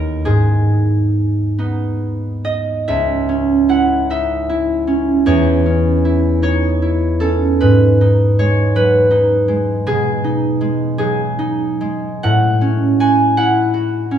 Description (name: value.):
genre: classical, solo harp piece.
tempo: 44-55 BPM (dotted quarters).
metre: 6/8.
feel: rubato.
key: C# minor.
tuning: A4 = 440 Hz.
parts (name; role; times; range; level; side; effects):
concert harp; solo; 0.0-14.2 s; C#2 to G#5; -13 LUFS; equal; none.
room: wet recital hall reverb, RT60 1.8 s.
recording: recorded in a church or concert hall, small room ambience.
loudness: -13 LUFS.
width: side -9 dB against mid.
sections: 0.0-2.9 A section; 2.9-14.2 B section.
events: none.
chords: 0.3 G#m; 2.9 C#m; 5.3 C#m/E; 7.6 G#m; 9.9 G#m/B; 12.2 F#m/A.